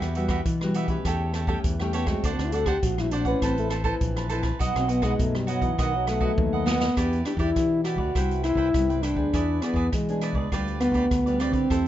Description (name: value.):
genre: samba and choro.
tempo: 101 BPM.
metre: 4/4.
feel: straight.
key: E minor.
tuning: A4 = 440 Hz.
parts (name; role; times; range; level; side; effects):
cavaquinho; accompaniment; 0.0-11.9 s; D4 to A5; -31 LUFS; right 5 dB; none.
nylon-string guitar; accompaniment; 0.0-11.9 s; F#2 to B4; -32 LUFS; left 2 dB; none.
fingered electric bass; bass; 0.0-11.9 s; A1 to E3; -28 LUFS; equal; none.
swinging big-band drum kit; drums; 0.0-11.8 s; hi-hat, kick drum, rim click, snare drum, toms; -29 LUFS; equal; none.
dark French horn; melody; 1.9-11.9 s; D#3 to A4; -25 LUFS; equal; none.
room: moderate studio reverb, RT60 0.7 s.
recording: dark, warm production, nothing above 7.7 kHz.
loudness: -22 LUFS.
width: side -12 dB against mid.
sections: 0.0-7.0 A section; 7.0-11.9 B section.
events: French horn solo 0.0-7.0; drum fill 6.4-7.0.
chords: 0.0 Emadd9; 1.1 A7/E; 2.2 D7; 3.4 Amadd9; 4.6 B; 7.0 Em7; 8.2 Cmaj7; 9.3 E7; 10.5 G7/D.